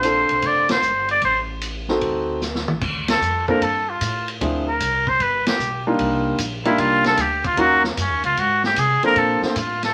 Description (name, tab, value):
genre	jazz, small-group swing and bop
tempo	151 BPM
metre	4/4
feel	swing 67% on 8ths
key	G minor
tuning	A4 = 440 Hz
part	trumpet with straight mute	melody	0.0-9.9 s	Bb3 to D5	-21 LUFS	equal	none
part	warm concert grand piano	accompaniment	0.0-9.5 s	F3 to A4	-24 LUFS	equal	none
part	upright bass	bass	0.0-9.9 s	F1 to C3	-32 LUFS	equal	none
part	vintage drum kit	drums	0.0-9.9 s	crash cymbal, hi-hat, kick drum, ride cymbal, snare drum, toms	-29 LUFS	equal	none
room	moderate studio reverb, RT60 0.7 s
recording	vinyl crackle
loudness	-20 LUFS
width	mono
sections	0.0-2.8 A section; 2.8-9.9 B section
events	band accent 0.6, 3.0, 5.4; drum fill 2.4-2.8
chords	0.0 Bbmaj7; 1.2 Adim; 2.0 D7b9; 2.8 G7sus2; 4.4 Dm7b5; 5.2 G7; 6.0 Cm11; 7.6 Ebm7; 8.4 Abadd9; 9.2 Bbmaj7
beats	0.03 0.43 0.83 | 1.23 1.62 2.02 2.42 | 2.82 3.22 3.61 4.01 | 4.41 4.80 5.20 5.60 | 6.00 6.39 6.79 7.18 | 7.58 7.98 8.38 8.77 | 9.17 9.56